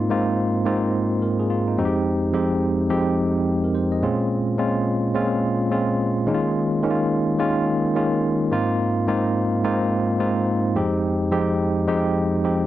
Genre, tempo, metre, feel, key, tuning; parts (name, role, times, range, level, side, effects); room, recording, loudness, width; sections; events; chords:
R&B; 107 BPM; 4/4; swing 63% on 16ths; F minor; A4 = 440 Hz
tine electric piano; solo; 0.0-12.7 s; F2 to Eb5; -19 LUFS; equal; medium stereo tremolo, slapback echo
light reverb; dry, close 1970s-style studio recording; -19 LUFS; side -13 dB against mid
0.0-12.7 A section
0.0 Ab6; 1.8 Fm9; 4.0 Bbm7; 6.3 Eb9sus4; 8.5 Ab6; 10.8 Fm9